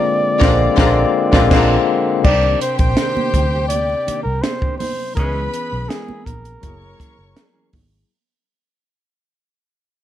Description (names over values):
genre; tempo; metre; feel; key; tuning
lush 1970s-style soul; 82 BPM; 4/4; straight; unclear; A4 = 440 Hz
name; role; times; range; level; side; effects
warm flugelhorn; melody; 0.0-7.7 s; Ab4 to D5; -21 LUFS; equal; none
barky tine electric piano; accompaniment; 0.0-8.1 s; C3 to Bb4; -20 LUFS; left 5 dB; auto-pan
dark chamber string section; second line; 0.4-7.7 s; Cb4 to Db6; -27 LUFS; left 2 dB; none
mellow electric guitar; riff; 0.4-8.0 s; Eb3 to C5; -28 LUFS; right 7 dB; wide subtle chorus
mellow horn section; stabs; 0.4-5.4 s; D3 to Ab4; -28 LUFS; right 1 dB; none
vintage muted fingered electric bass; bass; 0.4-8.0 s; Gb1 to D2; -20 LUFS; equal; none
compact cocktail drum kit; drums; 0.4-7.9 s; crash cymbal, hi-hat, kick drum, snare drum; -18 LUFS; equal; none
congas; percussion; 2.2-7.9 s; none; -30 LUFS; right 5 dB; none
room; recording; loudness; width
light reverb; none; -14 LUFS; side -11 dB against mid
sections
0.0-2.2 A section; 2.2-8.1 B section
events
band accent 0.0-2.2; fade-out 2.2-8.1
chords
0.0 Bb9; 2.2 Cm9; 5.2 Dbm7; 6.6 Gb9